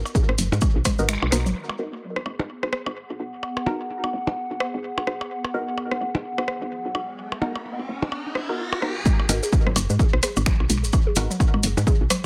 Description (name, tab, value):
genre	minimal techno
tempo	128 BPM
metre	4/4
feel	swing 59% on 16ths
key	G# minor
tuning	A4 = 439 Hz
part	woody FM bass	bass	0.0-12.1 s	F#1 to G#2	-28 LUFS	equal	sidechain pumping, high-pass filter
part	hollow square pluck	riff	0.1-1.5, 9.1-12.1 s	D#3 to G#4	-32 LUFS	equal	chorus, sidechain pumping, dub echo
part	electronic kick drum	drums	0.1-1.0, 9.1-12.0 s	none	-23 LUFS	equal	none
part	electronic percussion blips and rim click	percussion	0.1-12.2 s	none	-31 LUFS	equal	dub echo
part	maracas	percussion	0.1-1.5, 9.1-12.2 s	none	-34 LUFS	equal	analog delay
part	punchy analog drum machine	drums	0.4-1.4, 9.3-12.2 s	finger snaps, hi-hat	-29 LUFS	equal	none
part	filtered dub chord stab	stabs	1.0-11.2 s	B3 to A#4	-35 LUFS	equal	phaser, subtle chorus, analog delay
part	warbly tape-like pad	texture	1.6-9.1 s	B3 to F#5	-34 LUFS	equal	chorus, built-in reverb, sidechain pumping
part	riser	sound effects	6.6-9.1 s	none	-36 LUFS	equal	none
room	light reverb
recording	echo-heavy mix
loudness	-24 LUFS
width	mono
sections	0.0-1.6 A section; 1.6-9.1 B section; 9.1-12.3 C section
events	filter sweep on synth arpeggio sound 0.0-1.6; kick drops out 1.1-1.6; band accent 1.1; riser 6.6-9.1; drop 9.1-12.3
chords	0.0 G#m7